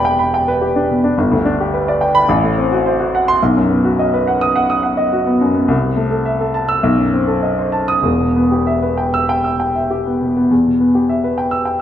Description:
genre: classical, virtuoso piano study.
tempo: 95-108 BPM.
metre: 4/4.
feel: rubato.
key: E minor.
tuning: A4 = 440 Hz.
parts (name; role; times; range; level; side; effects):
warm baby grand piano; solo; 0.0-11.8 s; E1 to E6; -13 LUFS; equal; none.
room: moderate recital hall reverb, RT60 1.3 s.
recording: none.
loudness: -13 LUFS.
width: side -10 dB against mid.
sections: 0.0-10.5 A section; 10.5-11.8 B section.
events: none.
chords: 0.0 Em7; 1.2 G; 2.3 F#dim/A; 3.4 B; 5.7 Am/C; 6.8 B7b9; 8.0 Em.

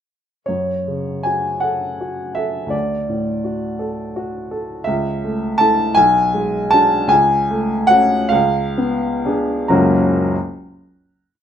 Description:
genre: classical, romantic character piece for solo piano.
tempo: 40-57 BPM (dotted quarters).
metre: 6/8.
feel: rubato.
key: F# minor.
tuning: A4 = 438 Hz.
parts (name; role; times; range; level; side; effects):
clear upright piano; solo; 0.5-10.4 s; F#1 to A#5; -15 LUFS; equal; none.
room: moderate large studio reverb, RT60 0.9 s.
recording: minimal, uncompressed stereo recording.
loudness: -15 LUFS.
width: side -9 dB against mid.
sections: 0.5-9.7 A section; 9.7-11.4 final chord.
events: slowing down 3.8-9.7.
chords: 0.5 F#m; 2.7 D; 4.9 A/C#; 6.0 G#m7b5/B; 7.1 F#m/C#; 8.3 C#7b9; 9.7 F#.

